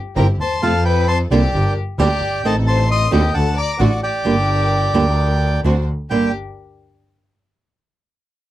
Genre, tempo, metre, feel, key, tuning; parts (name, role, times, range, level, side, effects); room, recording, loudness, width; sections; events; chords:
tango; 132 BPM; 4/4; rubato; G minor; A4 = 438 Hz
bandoneon; melody; 0.2-6.3 s; D5 to Eb6; -20 LUFS; right 1 dB
warm violin; second line; 0.2-6.3 s; F#4 to Eb5; -26 LUFS; left 9 dB
flamenco guitar; accompaniment; 0.2-6.3 s; G2 to G4; -18 LUFS; right 4 dB
rich studio string section; stabs; 0.2-6.3 s; C4 to C5; -28 LUFS; equal
rich double bass; bass; 0.2-6.3 s; G1 to F2; -18 LUFS; equal
little or no reverb; dry, close 1970s-style studio recording; -15 LUFS; side -14 dB against mid
0.0-6.1 A section; 6.1-7.9 B section
0.0 C/G; 0.6 F; 1.5 Gm; 2.4 Adim; 3.3 D; 4.3 Gm; 5.6 D7; 6.1 Gm